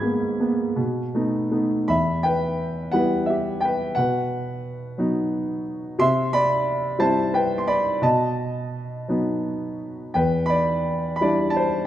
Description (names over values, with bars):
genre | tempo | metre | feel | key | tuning
classical, lyrical solo piano | 58 BPM (dotted quarters) | 6/8 | uneven beats, rubato | E minor | A4 = 440 Hz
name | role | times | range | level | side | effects
warm concert grand piano | solo | 0.0-11.9 s | E2 to G#6 | -20 LUFS | equal | none
room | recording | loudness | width
moderate scoring stage reverb, RT60 1.8 s | none | -20 LUFS | side -12 dB against mid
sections
0.0-1.9 A section; 1.9-11.9 B section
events
none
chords
0.0 G#madd9; 0.8 B7; 1.9 Em; 4.0 B; 6.0 C; 8.0 B; 10.1 Em7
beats
0.79 | 1.89 2.94 | 3.97 4.99 | 5.99 6.99 | 8.02 9.08 | 10.15 11.21